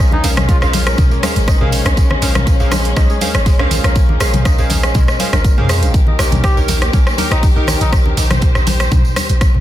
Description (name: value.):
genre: afro house.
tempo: 121 BPM.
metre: 4/4.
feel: swing 53% on 16ths.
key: Bb dorian.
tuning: A4 = 440 Hz.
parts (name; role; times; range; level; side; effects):
warm studio string section; sustained chords; 0.0-9.6 s; Eb3 to C5; -24 LUFS; left 3 dB; sidechain pumping.
kora; arpeggios; 0.0-9.4 s; Ab3 to Eb5; -26 LUFS; equal; vintage 12-bit sampler grit, sidechain pumping, digital delay.
warm analog keys; stabs; 0.0-8.1 s; Db4 to F5; -24 LUFS; right 2 dB; chorus, sidechain pumping, digital delay.
warm 808-style bass; bass; 0.0-9.6 s; Ab1 to F2; -17 LUFS; equal; sidechain pumping.
trumpet with bucket mute; melody; 0.1-0.7, 6.4-7.9 s; Eb4 to G4; -26 LUFS; left 2 dB; digital delay.
congas; percussion; 0.1-9.6 s; none; -24 LUFS; left 4 dB; none.
djembe; percussion; 0.1-9.5 s; none; -26 LUFS; right 1 dB; none.
house drum kit; drums; 0.2-9.6 s; hi-hat, rim click, toms; -19 LUFS; equal; none.
tambourine; percussion; 0.2-9.5 s; none; -28 LUFS; right 3 dB; none.
electronic kick drum; drums; 0.5-9.5 s; none; -13 LUFS; equal; none.
room: small room ambience.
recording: dense, heavily limited modern master.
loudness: -11 LUFS.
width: side -13 dB against mid.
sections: 0.0-9.6 A section.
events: none.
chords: 0.0 Bbm9; 5.9 Eb/Bb.